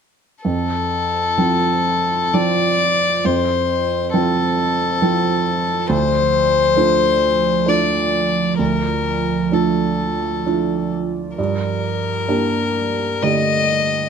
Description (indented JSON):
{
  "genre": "neoclassical piano and strings",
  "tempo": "66 BPM",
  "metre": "3/4",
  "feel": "uneven beats, rubato",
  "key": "unclear",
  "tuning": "A4 = 440 Hz",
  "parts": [
    { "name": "warm violin", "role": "melody", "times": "0.4-14.1 s", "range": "A4 to Eb5", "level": "-18 LUFS", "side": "left 4 dB", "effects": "slapback echo" },
    { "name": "felt-muted upright piano", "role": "accompaniment", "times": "0.4-14.1 s", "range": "D2 to G4", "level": "-20 LUFS", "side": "right 4 dB", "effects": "none" },
    { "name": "warbly tape-like pad", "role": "sustained chords", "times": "0.9-14.1 s", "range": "F3 to D5", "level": "-26 LUFS", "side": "right 5 dB", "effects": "chorus, built-in reverb" }
  ],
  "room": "light reverb",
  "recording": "none",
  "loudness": "-16 LUFS",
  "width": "side -7 dB against mid",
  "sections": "0.5-14.1 A section",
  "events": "none",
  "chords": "0.5 F; 5.9 Dm; 11.4 Gmadd9"
}